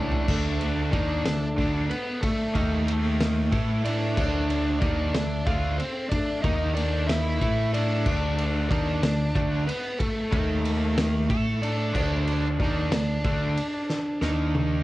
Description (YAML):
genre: quiet-loud alternative rock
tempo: 62 BPM (dotted quarters)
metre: 6/8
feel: straight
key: unclear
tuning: A4 = 440 Hz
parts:
  - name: biting lead guitar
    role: melody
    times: 0.0-14.8 s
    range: A3 to F5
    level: -28 LUFS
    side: equal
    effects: overdrive
  - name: fingerpicked acoustic archtop guitar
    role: arpeggios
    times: 0.0-8.1 s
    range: A2 to G4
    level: -34 LUFS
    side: left 1 dB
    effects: none
  - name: cranked stack guitar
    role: riff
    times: 0.0-14.8 s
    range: A2 to A4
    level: -29 LUFS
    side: equal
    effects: overdrive
  - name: overdriven picked electric bass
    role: bass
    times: 0.0-14.8 s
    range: C#2 to A2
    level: -28 LUFS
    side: equal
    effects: none
  - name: loose indie drum kit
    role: drums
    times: 0.1-14.7 s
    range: crash cymbal, kick drum, ride cymbal, snare drum, toms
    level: -29 LUFS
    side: equal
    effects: cassette tape
room: light reverb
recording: home recording on cassette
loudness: -23 LUFS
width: side -17 dB against mid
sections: 0.3-14.8 A section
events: drum fill 0.0, 13.9-14.8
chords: 0.3 D5; 2.5 Eb5; 3.5 A5; 4.2 Dm; 6.4 Eb5; 7.4 A5; 8.1 D5; 10.3 Eb5; 11.3 A5; 12.0 D5; 14.2 Eb5